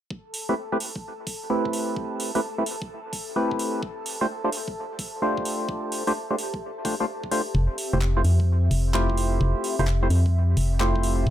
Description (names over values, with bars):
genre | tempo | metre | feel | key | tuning
UK garage, two-step garage | 129 BPM | 4/4 | swing 66% on 16ths | A minor | A4 = 440 Hz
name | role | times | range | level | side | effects
airy breathy pad | sustained chords | 0.1-11.3 s | C4 to A5 | -36 LUFS | left 1 dB | chorus, sidechain pumping
electronic kick drum | drums | 0.1-11.3 s | none | -36 LUFS | equal | high-pass filter on kick, small room ambience
warbly tape-like pad | texture | 1.2-11.3 s | A3 to E5 | -39 LUFS | left 3 dB | chorus, built-in reverb, phaser, sidechain pumping
garage drum kit | drums | 0.3-11.2 s | handclaps, hi-hat | -33 LUFS | right 2 dB | small room ambience
percussive organ stab | stabs | 0.5-11.3 s | A3 to C5 | -26 LUFS | equal | chorus, dub echo
organ-like FM bass | bass | 7.5-11.3 s | D1 to F2 | -20 LUFS | equal | sidechain pumping
room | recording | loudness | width
light reverb | none | -23 LUFS | side -12 dB against mid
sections
0.1-11.3 A section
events
fade-in on ambient pad 0.1-11.3; filter sweep on synth stab 0.1-11.3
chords
0.1 Am9; 3.8 G9sus4; 7.5 Fmaj9